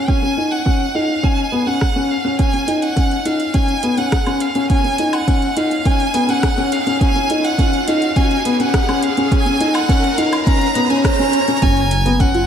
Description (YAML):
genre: piano and strings electronica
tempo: 104 BPM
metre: 4/4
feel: straight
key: unclear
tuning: A4 = 439 Hz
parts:
  - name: clear violin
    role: melody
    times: 0.0-12.5 s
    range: E#5 to A#5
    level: -20 LUFS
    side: right 1 dB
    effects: tape echo
  - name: felt-muted upright piano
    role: riff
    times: 0.0-12.4 s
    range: B3 to E#4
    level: -18 LUFS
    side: left 2 dB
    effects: tape echo
  - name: electronic kick drum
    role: drums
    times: 0.1-12.3 s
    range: none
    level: -17 LUFS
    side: right 1 dB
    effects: overdrive
  - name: deep house drum kit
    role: drums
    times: 1.8-12.5 s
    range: hi-hat, rim click, woodblock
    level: -28 LUFS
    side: equal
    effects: overdrive, high-pass filter on snare, high-pass filter on hats, high-pass filter on perc
  - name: riser and swell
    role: sound effects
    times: 3.7-11.6 s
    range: none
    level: -26 LUFS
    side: right 2 dB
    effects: none
  - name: dark detuned saw bass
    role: bass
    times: 11.6-12.5 s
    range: F#1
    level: -19 LUFS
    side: right 1 dB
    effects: sidechain pumping
room: wet plate reverb, RT60 3.1 s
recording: dreamy mix soaked in reverb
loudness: -14 LUFS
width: side -8 dB against mid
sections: 0.0-11.6 A section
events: build-up 0.0-11.6; riser 3.7-11.6; swell 10.5-11.6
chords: 0.0 B69 (rootless); 11.6 F#5